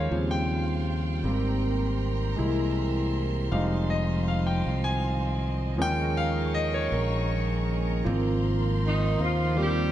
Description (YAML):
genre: gospel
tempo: 53 BPM (dotted quarters)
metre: 6/8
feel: straight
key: Ab major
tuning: A4 = 440 Hz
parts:
  - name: clear concert grand piano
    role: accompaniment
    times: 0.0-9.9 s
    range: Db3 to Ab5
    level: -29 LUFS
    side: equal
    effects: none
  - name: percussive tonewheel organ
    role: sustained chords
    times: 0.0-9.9 s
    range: Eb3 to C5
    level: -34 LUFS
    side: right 4 dB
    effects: slow rotary speaker
  - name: warm studio string section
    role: sustained chords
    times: 0.0-9.9 s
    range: Eb5 to Db6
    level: -39 LUFS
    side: right 1 dB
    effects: none
  - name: fingered electric bass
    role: bass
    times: 0.0-9.9 s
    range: F1 to Eb2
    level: -27 LUFS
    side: equal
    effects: none
  - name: breathy tenor saxophone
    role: melody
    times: 8.9-9.9 s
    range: Eb3 to G3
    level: -30 LUFS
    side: right 3 dB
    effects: none
  - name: mellow saxophone section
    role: melody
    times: 8.9-9.9 s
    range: Eb4 to G4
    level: -30 LUFS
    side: left 2 dB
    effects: none
room: moderate scoring stage reverb, RT60 1.6 s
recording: none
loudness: -24 LUFS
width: side -12 dB against mid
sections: 0.0-9.9 A section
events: grand piano solo 0.0-9.9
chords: 0.1 Eb13; 1.3 Abmaj9; 2.4 C7b13; 3.5 Fm7; 5.8 Eb7sus4; 8.1 Ab69